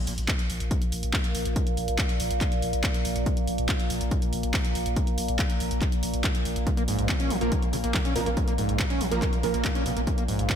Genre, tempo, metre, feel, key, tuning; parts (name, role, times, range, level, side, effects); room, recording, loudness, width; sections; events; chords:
driving peak-time techno; 141 BPM; 4/4; straight; Bb minor; A4 = 440 Hz
overtone-sweeping drone; drone; 0.5-10.6 s; Bb2 to Bb3; -32 LUFS; equal; chorus, built-in reverb, sidechain pumping
saturated sub bass; bass; 0.1-10.5 s; Bb1; -32 LUFS; equal; overdrive, sidechain pumping, low-pass filter
punchy analog drum machine; drums; 0.1-10.6 s; handclaps, hi-hat; -32 LUFS; equal; sidechain pumping on hats, sidechain pumping on cymbals
electronic kick drum; drums; 0.3-10.6 s; -27 LUFS; equal
overdriven acid bass; riff; 6.7-10.6 s; Ab2 to Db4; -30 LUFS; right 1 dB; distortion, wide subtle chorus, sidechain pumping, analog delay
rave stab; stabs; 7.4-9.6 s; F3 to Bb4; -31 LUFS; right 3 dB; chorus, built-in reverb, sidechain pumping, analog delay
light reverb; -24 LUFS; side -8 dB against mid
0.0-10.6 A section
0.0 Bb5